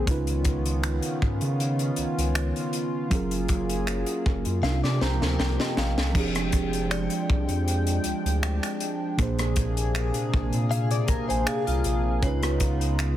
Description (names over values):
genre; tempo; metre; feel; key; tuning
contemporary R&B; 79 BPM; 4/4; swing 54% on 16ths; unclear; A4 = 438 Hz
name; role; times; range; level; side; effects
muted felt-like synth keys; accompaniment; 0.0-13.2 s; Bb2 to Bb5; -30 LUFS; right 3 dB; chorus
chorused pulse-width pad; sustained chords; 0.0-13.2 s; C3 to G5; -30 LUFS; left 1 dB; none
direct-recorded clean electric guitar; arpeggios; 0.0, 4.6-6.1, 10.7-12.2 s; F4 to F5; -33 LUFS; left 8 dB; analog chorus, digital delay
round analog bass; bass; 0.0-13.2 s; F1 to Db3; -27 LUFS; equal; none
crisp fusion drum kit; drums; 0.1-13.2 s; crash cymbal, finger snaps, hi-hat, kick drum, rim click, snare drum; -28 LUFS; equal; none
synth chime; texture; 6.9-13.2 s; Db5 to D5; -40 LUFS; left 3 dB; ensemble chorus, tremolo, digital delay
room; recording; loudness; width
small room ambience; heavily compressed radio sound; -23 LUFS; side -12 dB against mid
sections
0.0-6.2 A section; 6.2-13.2 B section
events
drum fill 4.6-6.2; synth keys fill 4.6-6.2, 10.7-12.2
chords
0.1 Db9; 3.1 Gbmaj9; 4.6 C7sus4; 6.2 Fm69; 9.2 Bb9; 12.2 Db9